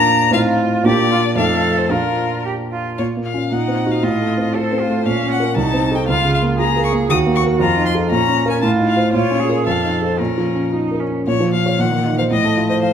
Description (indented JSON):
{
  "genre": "quick classical-period movement for piano trio",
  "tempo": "116 BPM",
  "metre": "2/4",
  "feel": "rubato",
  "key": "Bb minor",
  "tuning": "A4 = 440 Hz",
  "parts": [
    { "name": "rich violin", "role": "melody", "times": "0.0-12.9 s", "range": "Bb4 to Eb6", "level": "-20 LUFS", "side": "left 6 dB", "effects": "none" },
    { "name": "rich cello", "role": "second line", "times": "0.0-12.9 s", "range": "Eb3 to A4", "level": "-22 LUFS", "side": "right 4 dB", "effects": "none" },
    { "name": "warm concert grand piano", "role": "accompaniment", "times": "0.0-12.9 s", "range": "C2 to F5", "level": "-17 LUFS", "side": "right 1 dB", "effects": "none" }
  ],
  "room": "wet recital hall reverb, RT60 1.4 s",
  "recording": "none",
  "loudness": "-15 LUFS",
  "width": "side -8 dB against mid",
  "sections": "0.0-3.0 A section; 3.0-11.3 B section; 11.3-12.9 B section",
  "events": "none",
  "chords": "0.3 F7/A; 0.9 Bb; 1.4 F7; 1.9 Bb; 3.0 Bbm; 3.5 Cm7b5/Bb; 4.0 F/A; 5.1 Bbm; 5.6 Adim/C; 6.1 Bbm/Db; 7.1 Ebm; 7.6 F7; 8.1 Bbm; 8.6 F7/A; 9.1 Bbm; 9.7 F7; 10.2 Bbm; 11.8 Cm7b5/Bb; 12.3 F/A"
}